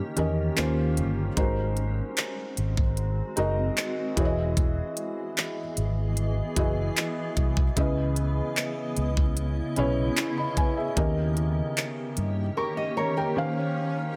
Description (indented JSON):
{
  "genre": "contemporary R&B",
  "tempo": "75 BPM",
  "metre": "4/4",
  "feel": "straight",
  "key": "unclear",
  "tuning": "A4 = 440 Hz",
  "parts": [
    { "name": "felt-muted upright piano", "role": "accompaniment", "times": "0.0-14.2 s", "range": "C#3 to C#6", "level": "-32 LUFS", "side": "equal", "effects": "none" },
    { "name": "granular cloud pad", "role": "sustained chords", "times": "0.0-14.2 s", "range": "C#3 to D#5", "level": "-37 LUFS", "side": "equal", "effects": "built-in reverb" },
    { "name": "fingered electric bass", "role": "bass", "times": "0.2-12.5 s", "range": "E1 to G2", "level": "-30 LUFS", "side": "equal", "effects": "none" },
    { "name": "trap drum kit", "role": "drums", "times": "0.2-12.4 s", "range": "handclaps, hi-hat, kick drum", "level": "-29 LUFS", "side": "equal", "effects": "none" },
    { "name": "swell", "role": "sound effects", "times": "13.3-14.2 s", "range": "none", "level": "-43 LUFS", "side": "equal", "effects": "none" },
    { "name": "nylon-string guitar", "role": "arpeggios", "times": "12.6-13.6 s", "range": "G4 to D#5", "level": "-34 LUFS", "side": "equal", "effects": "digital delay" }
  ],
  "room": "little or no reverb",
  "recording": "none",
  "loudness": "-27 LUFS",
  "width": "mono",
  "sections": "0.0-14.2 A section",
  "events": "break 0.0-1.4; swell 13.3-14.2",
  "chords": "0.0 D#7; 0.6 D#13; 1.4 G#7; 4.2 Emaj7; 7.8 C#m9; 11.0 D#7; 13.4 D#13",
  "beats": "0.57 | 1.37 2.17 2.97 3.77 | 4.57 5.37 6.17 6.97 | 7.77 8.57 9.37 10.17 | 10.97 11.77 12.57 13.37"
}